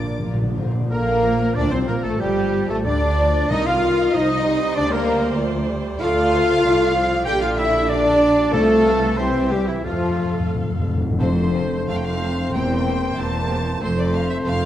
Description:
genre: quick classical-period movement for symphony orchestra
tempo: 86-97 BPM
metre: 2/4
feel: rubato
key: Bb major, F major from 6.0 s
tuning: A4 = 440 Hz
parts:
  - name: clear chamber violin section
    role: melody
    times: 0.0-14.7 s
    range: E4 to D6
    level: -32 LUFS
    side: left 2 dB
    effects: none
  - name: clear clarinet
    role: second line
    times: 0.0-14.7 s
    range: C4 to G5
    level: -30 LUFS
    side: left 1 dB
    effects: none
  - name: clear oboe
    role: second line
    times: 0.0-14.7 s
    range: E4 to G5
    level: -30 LUFS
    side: right 1 dB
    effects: none
  - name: mellow flute section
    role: second line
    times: 0.0-14.7 s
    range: E4 to A5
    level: -30 LUFS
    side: equal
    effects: none
  - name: rich chamber violin section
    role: second line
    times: 0.0-14.5 s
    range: D4 to G5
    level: -32 LUFS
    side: left 3 dB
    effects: none
  - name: mellow bassoon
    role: accompaniment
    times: 0.0-14.7 s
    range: D3 to Bb3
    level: -28 LUFS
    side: right 1 dB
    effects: none
  - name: rich chamber viola section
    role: accompaniment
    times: 0.0-14.5 s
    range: D3 to F5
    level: -31 LUFS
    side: equal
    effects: none
  - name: clear French horn section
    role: sustained chords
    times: 0.0-14.7 s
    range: E3 to G4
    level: -22 LUFS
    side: left 2 dB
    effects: none
  - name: rich chamber cello section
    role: bass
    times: 0.0-14.7 s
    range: E2 to G4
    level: -26 LUFS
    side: right 2 dB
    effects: none
  - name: rich chamber double bass section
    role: bass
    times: 0.0-14.7 s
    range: E1 to F2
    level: -26 LUFS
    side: right 2 dB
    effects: none
  - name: timpani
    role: percussion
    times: 0.0-0.9, 3.5-4.1, 8.5-12.2 s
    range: F2 to C3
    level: -25 LUFS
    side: left 1 dB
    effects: none
  - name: dark trumpet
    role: stabs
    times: 0.9-14.7 s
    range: E4 to G5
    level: -28 LUFS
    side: right 2 dB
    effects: none
room: wet recital hall reverb, RT60 1.4 s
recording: dark, warm production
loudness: -17 LUFS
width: side -12 dB against mid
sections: 0.9-11.2 A section; 11.2-14.7 B section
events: timpani fill 0.0-0.9, 9.8-11.2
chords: 0.0 Bb; 2.2 G5; 3.5 Cm7; 4.1 F5/C; 4.8 Bb/D; 6.0 Dm; 7.3 Gm/Bb; 8.5 F/C; 9.2 C; 9.8 F; 12.5 C7/E; 13.8 F

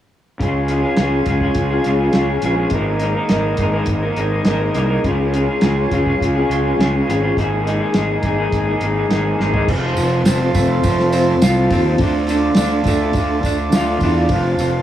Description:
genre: psychedelic rock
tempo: 104 BPM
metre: 4/4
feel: straight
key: unclear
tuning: A4 = 440 Hz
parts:
  - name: pedal harmonium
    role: sustained chords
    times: 0.4-14.8 s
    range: Eb4 to A5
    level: -25 LUFS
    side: right 6 dB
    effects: none
  - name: electric guitar through a small old amp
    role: riff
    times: 0.4-14.8 s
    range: F2 to Bb4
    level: -18 LUFS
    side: left 2 dB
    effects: harmonic tremolo, dub echo
  - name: fuzz fingered electric bass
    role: bass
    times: 0.4-14.8 s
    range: F1 to E2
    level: -20 LUFS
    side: equal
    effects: overdrive
  - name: cloth-damped thuddy drum kit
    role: drums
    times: 0.4-14.7 s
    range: crash cymbal, hi-hat, kick drum, snare drum, toms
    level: -20 LUFS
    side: right 1 dB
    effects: dub echo
  - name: tambourine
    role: percussion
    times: 9.7-14.7 s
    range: none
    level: -35 LUFS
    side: right 5 dB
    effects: dub echo
room: light reverb, small room reverb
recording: echo-heavy mix, small room ambience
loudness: -15 LUFS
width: side -11 dB against mid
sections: 0.4-9.7 A section; 9.7-14.8 B section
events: drum fill 9.4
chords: 0.4 Db; 2.7 Absus2; 5.1 Db; 7.4 Absus2; 9.7 F; 12.0 Dm; 14.3 F

